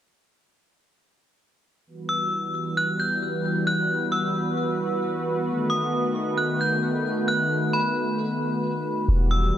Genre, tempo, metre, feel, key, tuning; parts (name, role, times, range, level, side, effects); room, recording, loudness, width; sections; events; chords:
hip hop, atmospheric cloud-rap; 133 BPM; 4/4; half-time; E harmonic minor; A4 = 436 Hz
warm analog pad; sustained chords; 1.9-9.6 s; D#3 to B4; -25 LUFS; equal; chorus
metallic FM bell; melody; 2.1-9.6 s; B5 to G6; -26 LUFS; left 1 dB; chorus, low-pass filter, tape echo
soft 808-style bass; bass; 9.1-9.5 s; E1; -20 LUFS; equal
light reverb; -22 LUFS; side -10 dB against mid
1.9-9.1 A section
1.9 Emadd9; 5.5 B7